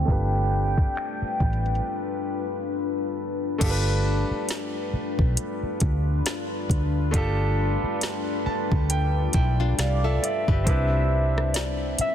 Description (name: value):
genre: contemporary R&B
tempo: 68 BPM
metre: 4/4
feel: swing 58% on 16ths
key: unclear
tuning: A4 = 439 Hz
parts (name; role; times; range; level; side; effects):
- warm velvety synth lead; melody; 0.0-2.7, 9.8-12.1 s; D5 to G5; -29 LUFS; equal; chorus, digital delay
- clear concert grand piano; accompaniment; 0.0-12.1 s; A3 to A5; -31 LUFS; right 2 dB; none
- deep dark ambient pad; sustained chords; 0.0-12.1 s; G3 to E5; -30 LUFS; left 4 dB; chorus, built-in reverb
- vintage muted fingered electric bass; bass; 0.0-12.0 s; G1 to D2; -24 LUFS; equal; none
- soft synth bell; texture; 0.0-12.1 s; F4 to A5; -41 LUFS; left 6 dB; none
- smooth R&B drum kit; drums; 0.1-12.1 s; crash cymbal, finger snaps, hi-hat, kick drum, rim click, snare drum; -26 LUFS; equal; soft clipping on snare
- nylon-string guitar; arpeggios; 9.3-10.9 s; D4 to B4; -34 LUFS; left 9 dB; none
room: little or no reverb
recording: dense, heavily limited modern master, low-pass filter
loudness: -22 LUFS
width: side -10 dB against mid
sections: 0.0-3.6 A section; 3.6-10.7 B section; 10.7-12.1 C section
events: filter sweep 0.0-3.6; break 1.8-3.6; grand piano fill 8.0-10.7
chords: 0.1 G7; 10.7 Cmaj9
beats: | 0.08 0.96 1.84 2.73 | 3.61 4.49 5.37 6.25 | 7.14 8.02 8.90 9.79 | 10.67 11.55